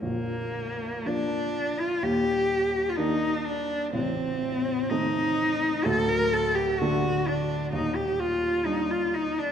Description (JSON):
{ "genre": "classical, romantic duo for cello and grand piano", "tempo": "57-66 BPM", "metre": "4/4", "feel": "rubato", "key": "unclear", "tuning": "A4 = 440 Hz", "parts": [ { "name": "rich cello", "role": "melody", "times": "0.0-9.5 s", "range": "Bb3 to Bb4", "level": "-26 LUFS", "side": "left 1 dB", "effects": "none" }, { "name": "warm baby grand piano", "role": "accompaniment", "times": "0.0-9.5 s", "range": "A0 to D4", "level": "-29 LUFS", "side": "right 1 dB", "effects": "none" } ], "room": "wet concert hall reverb, RT60 2.1 s", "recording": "none", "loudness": "-24 LUFS", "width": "side -8 dB against mid", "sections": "0.0-9.5 A section", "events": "none", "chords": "0.0 Bb; 2.0 Ebmaj7; 3.9 Adim; 5.8 D5; 7.7 Ebmaj7", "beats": "| 0.02 1.06 2.03 2.97 | 3.93 4.89 5.84 6.80 | 7.73 8.65" }